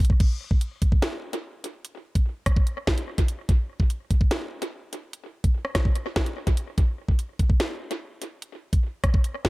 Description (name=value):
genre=hip hop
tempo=146 BPM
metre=4/4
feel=half-time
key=none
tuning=none
part: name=drill drum kit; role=drums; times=0.0-9.5 s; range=crash cymbal, hi-hat, kick drum, rim click, snare drum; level=-22 LUFS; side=equal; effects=tape echo
room=little or no reverb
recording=echo-heavy mix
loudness=-22 LUFS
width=side -22 dB against mid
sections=0.2-9.5 A section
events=drum fill 0.0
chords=none